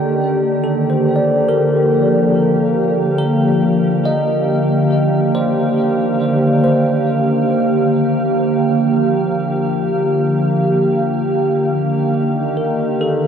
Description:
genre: ambient.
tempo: 71 BPM.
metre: 4/4.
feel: straight.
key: unclear.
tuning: A4 = 436 Hz.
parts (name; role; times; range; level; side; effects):
glassy FM pad; sustained chords; 0.0-13.3 s; D3 to F5; -14 LUFS; equal; ensemble chorus, built-in reverb.
bell-like tine electric piano; arpeggios; 0.0-13.3 s; A4 to Eb5; -20 LUFS; left 1 dB; phaser, diffuse ambient delay.
room: wet huge ambient reverb, RT60 7.6 s.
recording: dreamy mix soaked in reverb.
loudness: -13 LUFS.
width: side -7 dB against mid.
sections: 0.0-13.3 A section.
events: none.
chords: 0.0 Ebmaj7; 0.6 Gm7; 4.1 Ebmaj7; 7.5 Gm7; 10.9 Ebmaj7.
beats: | 0.64 1.49 2.34 3.20 | 4.06 4.93 5.79 6.65 | 7.50 8.36 9.20 10.04 | 10.88 11.73 12.57.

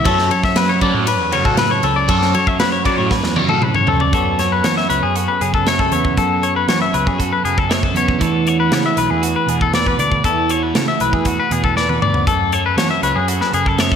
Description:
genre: math rock and midwest emo.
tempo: 118 BPM.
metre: 4/4.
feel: straight.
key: F# minor.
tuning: A4 = 436 Hz.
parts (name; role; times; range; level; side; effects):
twelve-string electric guitar; accompaniment; 0.0-14.0 s; F#2 to E5; -21 LUFS; right 6 dB; spring reverb.
twangy electric guitar; arpeggios; 0.0-14.0 s; F#4 to E5; -17 LUFS; left 6 dB; none.
biting overdriven guitar; riff; 0.0-3.9 s; F#3 to F#4; -23 LUFS; right 2 dB; phaser.
fuzz picked electric bass; bass; 0.0-14.0 s; B1 to F#3; -22 LUFS; equal; overdrive.
modern studio drum kit; drums; 0.1-14.0 s; hi-hat, kick drum, ride cymbal, snare drum, toms; -20 LUFS; right 1 dB; none.
room: moderate lush hall reverb, RT60 1.6 s, small room reverb.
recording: big arena sound.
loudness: -14 LUFS.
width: side -7 dB against mid.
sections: 0.0-4.1 A section; 4.1-14.0 B section.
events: drum fill 3.1-4.1, 11.8-12.3.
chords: 0.1 F#m7; 4.1 F#m11; 8.2 E9sus4; 12.3 F#m11.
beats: | 0.05 0.56 1.07 1.58 | 2.09 2.60 3.11 3.62 | 4.13 4.64 5.15 5.66 | 6.17 6.69 7.20 7.71 | 8.21 8.72 9.23 9.74 | 10.25 10.76 11.27 11.77 | 12.28 12.79 13.29 13.80.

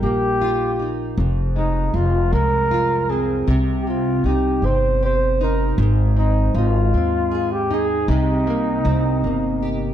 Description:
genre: pop.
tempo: 52 BPM (dotted quarters).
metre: 6/8.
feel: straight.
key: unclear.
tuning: A4 = 439 Hz.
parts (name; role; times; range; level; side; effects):
mellow flugelhorn; melody; 0.0-9.9 s; Eb4 to C5; -22 LUFS; equal; slapback echo.
nylon-string guitar; accompaniment; 0.0-9.9 s; F2 to Ab4; -22 LUFS; right 1 dB; double-tracked left and right.
upright bass; bass; 0.0-9.9 s; F1 to Eb2; -21 LUFS; equal; none.
room: light reverb, small room ambience.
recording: dark, warm production.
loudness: -17 LUFS.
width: side -10 dB against mid.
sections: 0.0-9.9 A section.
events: none.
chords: 0.0 Ebadd9; 1.2 Fm; 3.5 Cm; 5.8 Ab; 8.1 Cm7.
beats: 0.03 | 1.18 2.33 | 3.48 4.63 | 5.78 6.93 | 8.09 9.24.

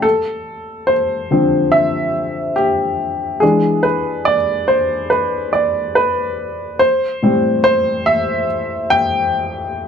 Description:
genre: R&B.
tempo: 71 BPM.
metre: 4/4.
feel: swing 64% on 16ths.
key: A minor from 6.8 s.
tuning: A4 = 441 Hz.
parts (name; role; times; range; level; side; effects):
warm baby grand piano; solo; 0.0-9.9 s; A2 to G5; -14 LUFS; equal; none.
room: light reverb.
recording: dark, warm production.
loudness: -14 LUFS.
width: side -7 dB against mid.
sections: 0.0-6.8 A section; 6.8-9.9 B section.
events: grand piano solo 0.0-6.8, 6.8-9.9.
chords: 0.0 Dm9; 3.4 E7; 6.8 Am7.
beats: | 0.04 0.88 1.73 2.57 | 3.42 4.26 5.11 5.95 | 6.80 7.64 8.49 9.33.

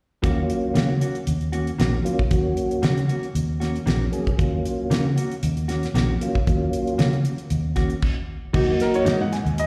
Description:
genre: straight-eighth soul blues.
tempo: 116 BPM.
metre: 4/4.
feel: swing 54% on 16ths.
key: Eb minor.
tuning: A4 = 441 Hz.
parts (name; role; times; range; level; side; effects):
tonewheel organ; accompaniment; 0.2-9.2 s; Gb3 to Ab4; -27 LUFS; equal; overdrive, slow rotary speaker, slapback echo.
mellow electric guitar; stabs; 0.2-9.2 s; Eb3 to Gb4; -31 LUFS; equal; slapback echo.
vintage muted fingered electric bass; bass; 0.2-9.7 s; Bb1 to Db3; -25 LUFS; equal; none.
damped 70s drum kit; drums; 0.2-9.7 s; crash cymbal, hi-hat, kick drum, snare drum; -28 LUFS; equal; none.
warm upright piano; second line; 8.8-9.7 s; Bb4 to Ab5; -27 LUFS; equal; slapback echo.
room: light reverb, studio reverb.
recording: live gig heard through the venue's PA, recital hall reverb.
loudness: -23 LUFS.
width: mono.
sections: 0.2-8.5 A section; 8.5-9.7 B section.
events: stop 8.0-8.5; upright piano solo 8.5-9.7.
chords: 0.2 Ebm7; 8.5 Ebm.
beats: | 0.23 0.75 1.27 1.79 | 2.31 2.83 3.35 3.87 | 4.39 4.91 5.43 5.95 | 6.47 6.99 7.50 8.02 | 8.54 9.06 9.58.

